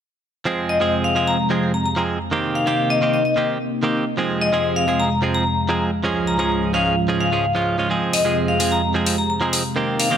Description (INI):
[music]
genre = EDM, festival progressive house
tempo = 129 BPM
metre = 4/4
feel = straight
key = F minor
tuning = A4 = 439 Hz
[part]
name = direct-recorded clean electric guitar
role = accompaniment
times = 0.5-10.2 s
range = Eb3 to Ab4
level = -22 LUFS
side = right 3 dB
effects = none
[part]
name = lush unison pad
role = sustained chords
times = 0.5-10.2 s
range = Db2 to Eb4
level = -23 LUFS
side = equal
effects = chorus
[part]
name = vibraphone with hard mallets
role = melody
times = 0.7-10.2 s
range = Eb5 to Bb5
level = -22 LUFS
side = left 3 dB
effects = dub echo
[part]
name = electronic hi-hat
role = drums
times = 8.1-10.1 s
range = none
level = -23 LUFS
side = left 2 dB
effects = none
[sound]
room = moderate lush hall reverb, RT60 2.1 s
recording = none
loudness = -17 LUFS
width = side -8 dB against mid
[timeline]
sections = 0.5-10.2 A section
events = filter sweep on analog synth pad 0.5-10.2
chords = 0.5 Fm; 2.3 Cm7; 4.2 Fm; 6.0 Db; 7.9 Fm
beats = | 0.46 0.93 1.39 1.86 | 2.32 2.79 3.25 3.72 | 4.18 4.65 5.11 5.58 | 6.04 6.51 6.97 7.44 | 7.90 8.37 8.83 9.30 | 9.76